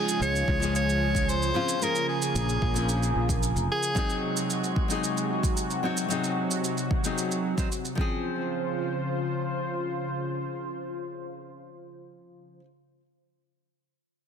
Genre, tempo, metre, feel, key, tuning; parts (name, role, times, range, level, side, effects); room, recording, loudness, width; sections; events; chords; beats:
sunset chillout; 112 BPM; 4/4; straight; Db major; A4 = 440 Hz
clear soprano saxophone; melody; 0.0-4.2 s; Ab4 to Db5; -30 LUFS; equal; ping-pong delay
nylon-string guitar; accompaniment; 0.0-12.6 s; F3 to C5; -31 LUFS; moving between left 3 dB and right 5 dB; auto-pan, ping-pong delay
lush unison pad; sustained chords; 0.0-12.6 s; C3 to C5; -32 LUFS; equal; chorus, phaser
shaker; drums; 0.1-8.0 s; -34 LUFS; right 5 dB; soft clipping on snare
sustaining fretless electric bass; bass; 0.2-3.7 s; F1 to Db2; -27 LUFS; equal; tube saturation, ensemble chorus
electronic kick drum; drums; 0.5-8.1 s; -28 LUFS; equal
light reverb; dense, heavily limited modern master; -25 LUFS; side -7 dB against mid
0.0-8.2 A section; 8.2-12.5 B section
0.0 Dbmaj7; 1.8 Bbm7; 4.0 Ab7; 8.0 Dbmaj7
0.21 0.74 1.28 | 1.81 2.35 2.88 3.42 | 3.96 4.49 5.03 5.56 | 6.10 6.63 7.17 7.71 | 8.24 8.78 9.31 9.85 | 10.38 10.92 11.46 11.99